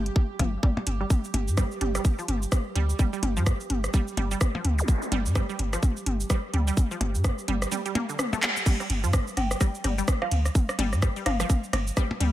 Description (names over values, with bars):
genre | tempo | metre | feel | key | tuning
minimal techno | 127 BPM | 4/4 | swing 59% on 16ths | unclear | A4 = 440 Hz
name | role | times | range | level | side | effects
punchy sub bass | bass | 0.0-12.3 s | G1 to G2 | -26 LUFS | equal | sidechain pumping
pulsing gated texture | texture | 0.0-8.7 s | G4 | -40 LUFS | right 8 dB | chorus, built-in reverb, sidechain pumping
booming analog drum machine | drums | 0.1-12.3 s | cabasa, crash cymbal, handclaps, hi-hat, ride cymbal, rim click | -31 LUFS | right 1 dB | none
electronic kick drum | drums | 0.2-12.1 s | none | -23 LUFS | equal | none
minimal click drum kit | percussion | 0.2-12.3 s | percussion blips, rim click, toms | -31 LUFS | left 2 dB | ping-pong delay
resonant blip pluck | riff | 0.4-12.3 s | D3 to Bb3 | -34 LUFS | right 2 dB | chorus, sidechain pumping, dub echo
zap | sound effects | 4.8-4.9 s | none | -34 LUFS | equal | none
soft synth bell | melody | 9.4-11.5 s | F5 to G5 | -35 LUFS | equal | chorus, phaser, ping-pong delay
room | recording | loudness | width
little or no reverb | none | -23 LUFS | side -14 dB against mid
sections
0.0-8.7 A section; 8.7-12.3 B section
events
drum fill 8.4; band accent 8.4; drop 8.7-12.3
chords
0.0 G5